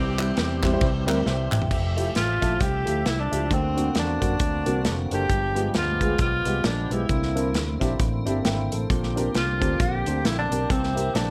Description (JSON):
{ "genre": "uptempo gospel", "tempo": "134 BPM", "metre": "4/4", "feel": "swing 58% on 8ths", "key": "F major", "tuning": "A4 = 441 Hz", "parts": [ { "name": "bright saxophone section", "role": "melody", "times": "0.0-1.0 s", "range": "C4 to G4", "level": "-36 LUFS", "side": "equal", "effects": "plate reverb" }, { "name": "dark grand piano", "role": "accompaniment", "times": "0.0-11.3 s", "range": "G2 to G5", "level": "-31 LUFS", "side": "equal", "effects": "none" }, { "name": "tonewheel organ", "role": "sustained chords", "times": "0.0-11.3 s", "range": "D3 to E5", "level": "-35 LUFS", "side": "equal", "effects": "fast rotary speaker, chorus vibrato" }, { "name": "fingered electric bass", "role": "bass", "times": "0.0-11.3 s", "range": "F1 to F#2", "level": "-30 LUFS", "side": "equal", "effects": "none" }, { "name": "modern studio drum kit", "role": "drums", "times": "0.2-11.3 s", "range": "crash cymbal, hi-hat, kick drum, ride cymbal, snare drum, toms", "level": "-29 LUFS", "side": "equal", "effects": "none" }, { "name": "group handclap", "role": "percussion", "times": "0.2-1.6 s", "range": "none", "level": "-35 LUFS", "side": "equal", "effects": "none" }, { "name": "breathy tenor saxophone", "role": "melody", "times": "2.2-11.3 s", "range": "C4 to G4", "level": "-29 LUFS", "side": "equal", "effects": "plate reverb" } ], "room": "light reverb", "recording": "none", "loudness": "-24 LUFS", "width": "mono", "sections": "0.0-1.7 A section; 1.7-11.3 B section", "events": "drum fill 1.3-1.7", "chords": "0.0 C; 1.7 Fmaj9; 3.5 D7b13; 5.3 G7b9; 7.1 C9; 8.9 Bb69; 10.7 C7" }